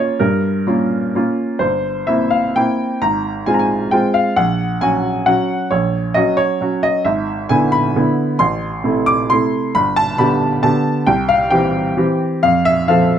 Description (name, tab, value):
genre	classical, piano waltz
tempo	122-143 BPM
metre	3/4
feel	rubato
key	A minor from 7.1 s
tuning	A4 = 439 Hz
part	bright baby grand piano	solo	0.0-13.2 s	G1 to D6	-14 LUFS	equal	none
room	light reverb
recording	close, detailed microphones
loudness	-14 LUFS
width	side -9 dB against mid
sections	0.0-13.2 A section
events	none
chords	0.0 Gm7b5; 1.6 C7/G; 3.0 Fm/Ab; 4.4 Gb/Bb; 7.1 E7/G#; 8.4 Am; 9.8 G; 11.1 C; 12.4 F